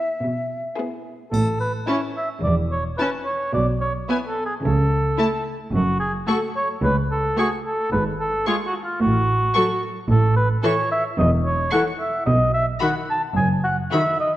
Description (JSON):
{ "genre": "cinematic, playful, whimsical film cue", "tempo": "110 BPM", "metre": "4/4", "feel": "straight", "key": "A major", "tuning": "A4 = 440 Hz", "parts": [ { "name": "rich chamber violin section", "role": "melody", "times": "0.0-14.0 s", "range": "G#4 to C#6", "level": "-29 LUFS", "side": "left 2 dB", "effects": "none" }, { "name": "mellow silver concert flute", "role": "second line", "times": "0.0-0.8 s", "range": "E5", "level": "-27 LUFS", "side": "left 1 dB", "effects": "none" }, { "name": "rich chamber violin section", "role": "second line", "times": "0.0-14.0 s", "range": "E4 to A4", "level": "-29 LUFS", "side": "left 3 dB", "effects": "none" }, { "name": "rich chamber viola section", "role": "accompaniment", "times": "0.0-14.0 s", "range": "D#3 to C#4", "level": "-26 LUFS", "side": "equal", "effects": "none" }, { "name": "rich chamber cello section", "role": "bass", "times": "0.2-13.8 s", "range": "C#2 to C#3", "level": "-24 LUFS", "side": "right 1 dB", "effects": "none" }, { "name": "mellow oboe", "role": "second line", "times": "1.3-14.3 s", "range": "E#4 to A5", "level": "-23 LUFS", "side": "equal", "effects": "none" }, { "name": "clear chamber double bass section", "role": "bass", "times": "1.3-13.8 s", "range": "E1 to C#2", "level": "-24 LUFS", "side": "right 2 dB", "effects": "none" }, { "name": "triangle", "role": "percussion", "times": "1.3-2.4 s", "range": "none", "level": "-44 LUFS", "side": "left 4 dB", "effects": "none" } ], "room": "moderate scoring stage reverb, RT60 1.7 s", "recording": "worn, warbling old tape, cassette tape, warbly pitch drift", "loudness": "-19 LUFS", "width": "side -14 dB against mid", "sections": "0.0-1.3 A section; 1.3-14.4 B section", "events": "none", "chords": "0.0 E; 1.3 A; 3.5 N.C.; 4.6 A/C#; 5.7 F#m; 7.9 C#/G# (rootless); 9.0 F#m/A; 10.1 A; 12.3 B5" }